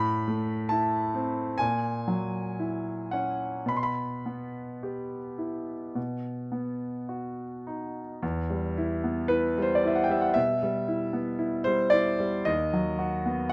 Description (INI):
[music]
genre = classical, romantic nocturne for solo piano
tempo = 52-72 BPM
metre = 4/4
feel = rubato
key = E minor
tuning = A4 = 439 Hz
[part]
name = clear concert grand piano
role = solo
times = 0.0-13.5 s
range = D#2 to C6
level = -29 LUFS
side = equal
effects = none
[sound]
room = little or no reverb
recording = close, detailed microphones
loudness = -29 LUFS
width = mono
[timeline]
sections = 0.0-8.2 A section; 8.2-13.5 B section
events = none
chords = 0.0 Am; 1.6 F#7/A#; 3.7 Em/B; 6.0 B; 8.2 Em; 12.5 B/D#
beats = 0.70 1.60 2.59 | 3.70 4.84 5.96 7.10 | 8.22 9.30 10.36 11.39 | 12.47 13.50